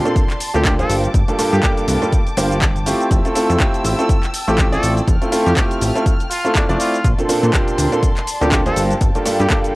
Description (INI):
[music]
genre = piano house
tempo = 122 BPM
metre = 4/4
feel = swing 57% on 16ths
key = F major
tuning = A4 = 440 Hz
[part]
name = dark studio violin section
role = sustained chords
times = 0.0-9.8 s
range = D5 to F6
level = -27 LUFS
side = left 1 dB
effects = sidechain pumping, cassette tape
[part]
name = clear baby grand piano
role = riff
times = 0.1-9.8 s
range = G2 to D5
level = -18 LUFS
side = right 1 dB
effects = sidechain pumping, cassette tape, analog delay
[part]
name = house drum kit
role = drums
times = 0.1-9.7 s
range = handclaps, hi-hat, shaker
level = -24 LUFS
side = equal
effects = overdrive, studio reverb
[part]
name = electronic kick drum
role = drums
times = 0.2-9.6 s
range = none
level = -17 LUFS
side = equal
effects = studio reverb
[part]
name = trumpet with straight mute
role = melody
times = 0.5-9.6 s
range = D4 to A4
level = -25 LUFS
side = equal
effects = cassette tape, analog delay
[part]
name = plucky analog bass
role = bass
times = 0.5-9.5 s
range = F1 to Bb2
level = -19 LUFS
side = equal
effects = sidechain pumping
[sound]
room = light reverb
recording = home recording on cassette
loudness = -14 LUFS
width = side -21 dB against mid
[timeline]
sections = 0.0-9.8 A section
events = none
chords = 0.0 Bbmaj9; 0.9 Gm9; 3.1 Fmaj7; 7.0 Bbmaj9; 8.8 Gm9